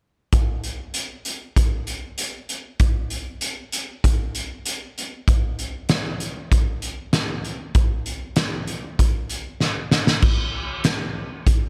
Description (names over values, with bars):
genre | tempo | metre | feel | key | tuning
dream pop | 97 BPM | 4/4 | straight | none | none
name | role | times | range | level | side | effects
loose indie drum kit | drums | 0.3-11.6 s | crash cymbal, hi-hat, kick drum, snare drum | -23 LUFS | equal | none
room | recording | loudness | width
light reverb | none | -23 LUFS | mono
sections
0.3-10.2 A section; 10.2-11.7 B section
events
drum fill 9.6-10.2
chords
none